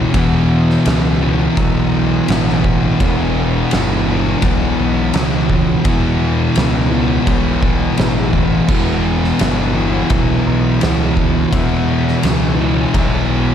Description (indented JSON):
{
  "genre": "stoner and doom metal",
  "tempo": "84 BPM",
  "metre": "4/4",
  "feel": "straight",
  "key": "unclear",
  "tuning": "A4 = 438 Hz",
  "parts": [
    { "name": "tonewheel organ", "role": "sustained chords", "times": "0.0-13.5 s", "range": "E3 to F#4", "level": "-28 LUFS", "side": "right 1 dB", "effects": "none" },
    { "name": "fuzz guitar", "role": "riff", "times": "0.0-13.5 s", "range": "E2 to E3", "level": "-21 LUFS", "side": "equal", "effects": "distortion" },
    { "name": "thick fuzz guitar", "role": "riff", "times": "0.0-13.5 s", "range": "E2 to E3", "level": "-19 LUFS", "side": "left 9 dB", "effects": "distortion" },
    { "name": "thick fuzz guitar", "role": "riff", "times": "0.0-13.5 s", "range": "E2 to E3", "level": "-20 LUFS", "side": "right 8 dB", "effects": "distortion" },
    { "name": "fuzz picked electric bass", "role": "bass", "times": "0.0-13.5 s", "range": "E1 to E2", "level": "-19 LUFS", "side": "equal", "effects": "overdrive" },
    { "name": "oversized low-tuned drum kit", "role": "drums", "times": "0.1-13.1 s", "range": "crash cymbal, kick drum, ride cymbal, snare drum", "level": "-19 LUFS", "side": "right 1 dB", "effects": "none" }
  ],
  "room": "light reverb",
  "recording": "none",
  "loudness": "-13 LUFS",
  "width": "side -9 dB against mid",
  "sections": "0.0-13.5 A section",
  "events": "none",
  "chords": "0.0 E5",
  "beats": "| 0.15 0.86 1.58 2.29 | 3.01 3.72 4.43 5.15 | 5.86 6.57 7.28 7.99 | 8.70 9.41 10.12 10.82 | 11.53 12.24 12.95"
}